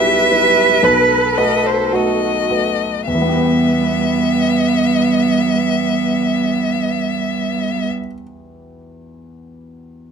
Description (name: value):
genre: classical, slow romantic movement for piano quartet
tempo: 53 BPM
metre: 4/4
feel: rubato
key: E minor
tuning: A4 = 440 Hz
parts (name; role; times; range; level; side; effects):
- rich violin; melody; 0.0-7.9 s; B4 to E5; -19 LUFS; left 7 dB; none
- warm cello; second line; 0.0-7.9 s; G3 to B4; -18 LUFS; right 8 dB; none
- clear grand piano; accompaniment; 0.0-10.1 s; B1 to G5; -22 LUFS; left 2 dB; none
- rich viola; accompaniment; 0.0-7.9 s; B3 to A4; -19 LUFS; right 3 dB; none
room: light reverb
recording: none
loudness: -13 LUFS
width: side -6 dB against mid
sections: 0.0-3.1 A section; 3.1-7.6 B section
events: slowing down 0.0-3.1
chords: 0.0 Em/B; 0.8 B7; 3.1 Em